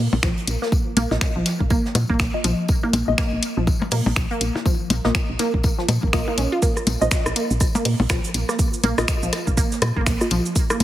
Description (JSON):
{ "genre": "minimal techno", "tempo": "122 BPM", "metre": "4/4", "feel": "swing 59% on 16ths", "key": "unclear", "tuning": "A4 = 440 Hz", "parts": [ { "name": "woody FM bass", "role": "bass", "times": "0.0-10.8 s", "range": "Bb1 to Bb2", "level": "-23 LUFS", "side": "equal", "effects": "sidechain pumping" }, { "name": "electronic percussion blips and rim click", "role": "percussion", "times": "0.1-10.8 s", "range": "none", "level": "-26 LUFS", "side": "left 3 dB", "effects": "overdrive, small room ambience, ping-pong delay" }, { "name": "resonant blip pluck", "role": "riff", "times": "0.2-10.7 s", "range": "F3 to F4", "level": "-25 LUFS", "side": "right 1 dB", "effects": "phaser, sidechain pumping, digital delay" }, { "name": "electronic kick drum", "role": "drums", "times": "0.2-10.7 s", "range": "none", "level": "-21 LUFS", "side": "equal", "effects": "small room ambience" }, { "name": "house drum kit", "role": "drums", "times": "0.2-10.8 s", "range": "finger snaps, hi-hat, shaker", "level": "-26 LUFS", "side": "equal", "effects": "small room ambience" }, { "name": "jazz brush drum kit", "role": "drums", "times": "0.2-10.8 s", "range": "hi-hat, snare drum, tambourine", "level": "-34 LUFS", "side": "equal", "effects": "high-pass filter on hats, small room ambience, high-pass filter on snare, high-pass filter on perc, high-pass filter on room" }, { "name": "filtered dub chord stab", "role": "stabs", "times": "1.1-10.3 s", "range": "Bb3 to Eb5", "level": "-27 LUFS", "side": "left 1 dB", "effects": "phaser, ping-pong delay" } ], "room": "light reverb, digital ambience", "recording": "heavily compressed radio sound", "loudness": "-18 LUFS", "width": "side -13 dB against mid", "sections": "0.0-10.8 A section", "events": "none", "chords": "none", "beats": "0.23 | 0.72 1.21 1.71 2.20 | 2.69 3.18 3.67 4.16 | 4.66 5.15 5.64 6.13 | 6.62 7.12 7.61 8.10 | 8.59 9.08 9.57 10.07 | 10.56" }